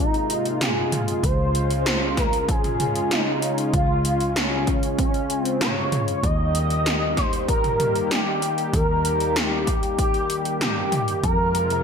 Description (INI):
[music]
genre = synthwave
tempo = 96 BPM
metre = 4/4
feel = straight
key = unclear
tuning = A4 = 440 Hz
[part]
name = expressive synth lead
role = melody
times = 0.0-11.8 s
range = Db4 to Eb5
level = -24 LUFS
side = equal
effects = ensemble chorus, ping-pong delay
[part]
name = warm analog pad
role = sustained chords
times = 0.0-11.8 s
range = C3 to G4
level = -27 LUFS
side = left 1 dB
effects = lush chorus, sidechain pumping
[part]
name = picked electric bass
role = bass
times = 0.0-11.8 s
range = Ab1 to F2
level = -27 LUFS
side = equal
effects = none
[part]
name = 80s electronic pad drums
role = drums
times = 0.1-11.8 s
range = hi-hat, snare drum, toms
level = -25 LUFS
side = equal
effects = gated reverb on snare and toms, gated reverb
[part]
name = electronic kick drum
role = drums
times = 1.2-11.4 s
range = none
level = -24 LUFS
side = equal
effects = none
[part]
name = riser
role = sound effects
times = 11.8 s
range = none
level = barely audible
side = none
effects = none
[sound]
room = light reverb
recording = none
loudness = -20 LUFS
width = side -6 dB against mid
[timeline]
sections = 0.0-11.8 A section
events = none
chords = 0.0 Abadd9; 1.2 Dbmaj7; 6.2 Eb; 11.2 Fm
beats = 0.61 | 1.24 1.86 2.49 3.11 | 3.74 4.36 4.99 5.61 | 6.24 6.86 7.49 8.11 | 8.74 9.36 9.99 10.61 | 11.24